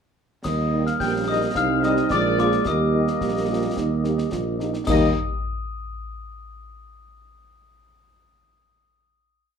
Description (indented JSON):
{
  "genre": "military-style march for wind band",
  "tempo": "108 BPM",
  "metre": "2/4",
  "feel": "straight",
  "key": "Eb major",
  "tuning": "A4 = 440 Hz",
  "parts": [
    { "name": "mellow trumpet section", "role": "melody", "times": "0.4-5.1 s", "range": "D5 to G5", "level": "-29 LUFS", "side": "left 1 dB", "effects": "none" },
    { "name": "glockenspiel with soft plastic mallets", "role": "second line", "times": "0.4-5.2 s", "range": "D6 to G6", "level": "-28 LUFS", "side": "left 7 dB", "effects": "none" },
    { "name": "mellow tuba", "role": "bass", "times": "0.4-5.1 s", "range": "Bb1 to Eb2", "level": "-24 LUFS", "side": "right 3 dB", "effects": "none" },
    { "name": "concert snare drum, clash cymbals and concert bass drum", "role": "drums", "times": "0.4-5.2 s", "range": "none", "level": "-32 LUFS", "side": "left 2 dB", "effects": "none" },
    { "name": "warm trombone section", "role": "sustained chords", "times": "0.5-5.1 s", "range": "G3 to C4", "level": "-28 LUFS", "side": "right 4 dB", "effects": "none" },
    { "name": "mellow French horn section", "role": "accompaniment", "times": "0.7-5.1 s", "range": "G3 to Ab4", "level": "-27 LUFS", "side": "left 5 dB", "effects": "none" },
    { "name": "warm euphonium", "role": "second line", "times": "1.0-4.9 s", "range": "Eb4 to G4", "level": "-27 LUFS", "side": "right 6 dB", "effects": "none" }
  ],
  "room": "moderate large studio reverb, RT60 0.8 s",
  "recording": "dark, warm production",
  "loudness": "-20 LUFS",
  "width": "side -7 dB against mid",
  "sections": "0.5-4.9 A section; 4.9-6.0 final chord",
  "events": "none",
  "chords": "0.5 Eb; 1.6 Cm; 2.1 Bb7; 2.7 Eb"
}